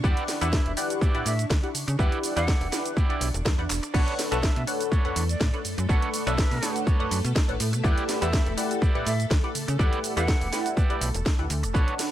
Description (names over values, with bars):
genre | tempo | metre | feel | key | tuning
filtered disco house | 123 BPM | 4/4 | swing 54% on 16ths | unclear | A4 = 441 Hz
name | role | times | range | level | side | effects
funky polysynth comp | accompaniment | 0.0-12.1 s | D4 to C#6 | -31 LUFS | left 1 dB | chorus, phaser, cassette tape, sidechain pumping
string machine, full ensemble | sustained chords | 0.0-12.1 s | A3 to C#6 | -35 LUFS | left 1 dB | phaser, ensemble chorus, sidechain pumping
clean electric guitar | riff | 0.0-11.9 s | D4 to E5 | -33 LUFS | right 2 dB | sidechain pumping
slap-like FM bass | bass | 0.0-11.8 s | E1 to C#3 | -28 LUFS | equal | sidechain pumping
electronic kick drum | drums | 0.0-11.9 s | none | -23 LUFS | equal | none
house drum kit | drums | 0.0-12.1 s | crash cymbal, handclaps, hi-hat, ride cymbal, shaker, snare drum | -31 LUFS | right 1 dB | sidechain pumping on hats, sidechain pumping on perc, sidechain pumping on cymbals
breathy jazz flute | melody | 0.5-10.5 s | B4 to F#5 | -36 LUFS | right 2 dB | vintage 12-bit sampler grit, sidechain pumping, dub echo
room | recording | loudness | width
little or no reverb | none | -22 LUFS | side -12 dB against mid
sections
0.0-12.1 A section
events
drum fill 3.7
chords
0.0 Em7; 3.9 Bm9; 7.8 Em7